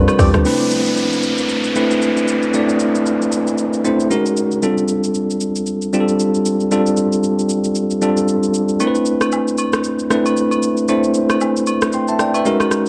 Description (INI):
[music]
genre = amapiano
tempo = 115 BPM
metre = 4/4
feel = swing 58% on 16ths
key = unclear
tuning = A4 = 441 Hz
[part]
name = bell-like tine electric piano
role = accompaniment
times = 0.0-12.9 s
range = G3 to C6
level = -18 LUFS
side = equal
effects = cassette tape
[part]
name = smooth R&B drum kit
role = drums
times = 0.1-12.9 s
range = hi-hat, kick drum, rim click, shaker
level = -25 LUFS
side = equal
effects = cassette tape
[part]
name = agogo bells and woodblock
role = percussion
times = 0.1-0.2, 8.8-12.7 s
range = none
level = -29 LUFS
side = equal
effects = none
[part]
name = downlifter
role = sound effects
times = 0.5-4.6 s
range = none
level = -27 LUFS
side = equal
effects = none
[sound]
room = light reverb, digital ambience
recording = home recording on cassette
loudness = -17 LUFS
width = mono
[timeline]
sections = 0.5-12.9 A section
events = kick muted 6.7-8.8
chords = 0.5 Cmaj13; 4.1 F#69; 4.6 F69; 8.8 Cmaj13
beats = | 0.45 0.97 1.50 2.02 | 2.54 3.06 3.58 4.11 | 4.63 5.15 5.67 6.19 | 6.71 7.24 7.76 8.28 | 8.80 9.32 9.84 10.37 | 10.89 11.41 11.93 12.45